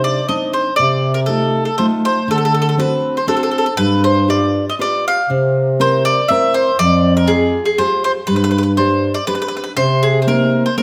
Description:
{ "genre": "italian folk, Italian serenade", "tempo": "120 BPM", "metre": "3/4", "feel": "straight", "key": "C minor", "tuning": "A4 = 444 Hz", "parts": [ { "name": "mandolin", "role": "melody", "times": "0.0-10.8 s", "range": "Ab4 to F5", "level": "-19 LUFS", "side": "equal", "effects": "none" }, { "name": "nylon-string guitar", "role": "accompaniment", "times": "0.0-10.8 s", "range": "C3 to G5", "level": "-21 LUFS", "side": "equal", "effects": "none" }, { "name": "mellow bass clarinet", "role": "bass", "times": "0.0-10.8 s", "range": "F2 to D3", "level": "-20 LUFS", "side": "equal", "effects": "none" } ], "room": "wet recital hall reverb, RT60 1.4 s", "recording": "none", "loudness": "-15 LUFS", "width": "mono", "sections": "0.0-10.8 A section", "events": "none", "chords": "0.0 Cmadd9; 0.8 F7/C; 2.3 D7; 3.8 G7; 5.3 C7; 6.8 Fmadd9; 8.3 G; 9.8 Cm7" }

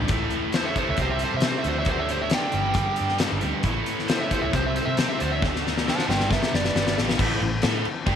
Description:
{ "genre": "blues rock power trio and southern rock", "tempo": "136 BPM", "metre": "4/4", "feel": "straight", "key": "unclear", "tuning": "A4 = 441 Hz", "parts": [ { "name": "biting overdriven guitar", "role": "riff", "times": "0.0-8.2 s", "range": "G2 to A4", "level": "-27 LUFS", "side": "right 1 dB", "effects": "none" }, { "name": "vintage muted fingered electric bass", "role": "bass", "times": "0.0-8.2 s", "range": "F#1 to C3", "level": "-29 LUFS", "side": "right 1 dB", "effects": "none" }, { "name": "huge arena drum kit", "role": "drums", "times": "0.1-8.2 s", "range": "crash cymbal, hi-hat, kick drum, snare drum", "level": "-25 LUFS", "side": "left 3 dB", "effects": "none" }, { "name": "overdriven slide guitar", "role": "melody", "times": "0.6-7.0 s", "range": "G4 to A5", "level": "-28 LUFS", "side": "equal", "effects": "none" }, { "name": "bluesy overdriven lead guitar", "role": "second line", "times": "0.6-7.0 s", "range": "F#4 to F#5", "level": "-34 LUFS", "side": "right 11 dB", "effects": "distortion" } ], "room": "light reverb, small room ambience", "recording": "1960s-style stereo", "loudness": "-21 LUFS", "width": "side -8 dB against mid", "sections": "0.0-7.2 A section", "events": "drum fill 5.4-7.2", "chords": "0.1 A5; 1.0 C5; 1.7 D5; 2.5 G5; 3.6 A5; 4.5 C5; 5.2 D5; 6.1 G; 7.2 A5" }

